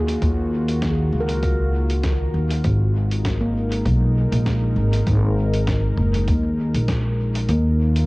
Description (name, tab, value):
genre	ambient dub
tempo	99 BPM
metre	4/4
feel	swing 55% on 16ths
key	unclear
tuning	A4 = 438 Hz
part	warm analog pad	sustained chords	0.0-8.1 s	Eb3 to Bb4	-28 LUFS	left 1 dB	chorus, cassette tape
part	handpan	arpeggios	0.0-6.0 s	Bb3 to Bb4	-30 LUFS	right 1 dB	cassette tape, analog delay
part	upright bass	bass	0.0-8.1 s	Gb1 to Eb2	-19 LUFS	equal	none
part	lo-fi sampler-style drum kit	drums	0.1-8.1 s	hi-hat, snare drum, toms	-32 LUFS	equal	small room ambience, cassette tape, dub echo
part	electronic kick drum	drums	0.2-7.0 s	none	-26 LUFS	equal	overdrive, small room ambience, cassette tape
room	light reverb, digital ambience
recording	home recording on cassette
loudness	-18 LUFS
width	side -23 dB against mid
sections	0.0-7.5 A section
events	filter sweep on handpan 0.0-7.5; band accent 6.9-7.2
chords	0.0 Ebm; 2.6 Ab7(no3); 7.5 Ebm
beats	| 0.22 0.82 1.43 2.04 | 2.64 3.25 3.85 4.46 | 5.07 5.67 6.28 6.88 | 7.49